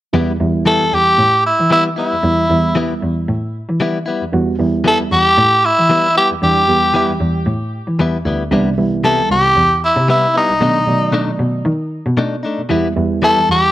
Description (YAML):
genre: blues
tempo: 115 BPM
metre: 4/4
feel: swing 56% on 16ths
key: E minor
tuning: A4 = 440 Hz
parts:
  - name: reed electric piano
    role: accompaniment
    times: 0.1-13.7 s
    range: D#3 to D5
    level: -19 LUFS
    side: right 4 dB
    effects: none
  - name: direct-recorded clean electric guitar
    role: stabs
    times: 0.1-13.4 s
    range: B2 to E4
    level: -19 LUFS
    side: left 3 dB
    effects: none
  - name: dark cello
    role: bass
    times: 0.1-13.6 s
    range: C2 to E3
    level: -19 LUFS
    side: equal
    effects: none
  - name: growling tenor saxophone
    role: melody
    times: 0.7-13.7 s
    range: D#4 to A4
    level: -13 LUFS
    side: equal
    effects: plate reverb
room: moderate club reverb, RT60 0.8 s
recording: none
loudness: -12 LUFS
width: side -14 dB against mid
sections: 0.1-13.7 A section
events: none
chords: 0.1 Em; 8.5 Cmaj7; 10.6 B7#9; 12.7 Em